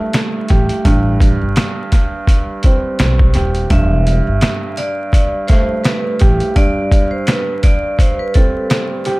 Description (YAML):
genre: hip hop, boom-bap hip-hop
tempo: 84 BPM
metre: 4/4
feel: swing 56% on 16ths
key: E minor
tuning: A4 = 440 Hz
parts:
  - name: dark upright piano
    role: accompaniment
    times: 0.0-9.2 s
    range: G2 to G4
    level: -19 LUFS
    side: right 2 dB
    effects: high-pass filter, low-pass filter, analog delay
  - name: trip hop sampler-style drum kit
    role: drums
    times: 0.1-9.2 s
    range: hi-hat, kick drum, snare drum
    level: -14 LUFS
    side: equal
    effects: none
  - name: upright bass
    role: bass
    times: 0.5-6.4 s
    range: D#1 to B1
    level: -16 LUFS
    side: equal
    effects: none
  - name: vibraphone with hard mallets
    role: melody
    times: 3.7-8.9 s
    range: A4 to E5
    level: -21 LUFS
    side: right 1 dB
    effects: high-pass filter, low-pass filter, analog delay
room: small room ambience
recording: echo-heavy mix, vinyl crackle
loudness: -12 LUFS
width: side -22 dB against mid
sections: 0.0-9.2 A section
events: none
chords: 0.0 Emadd11 (rootless); 0.9 Am7; 3.7 Em7; 6.6 Gsus4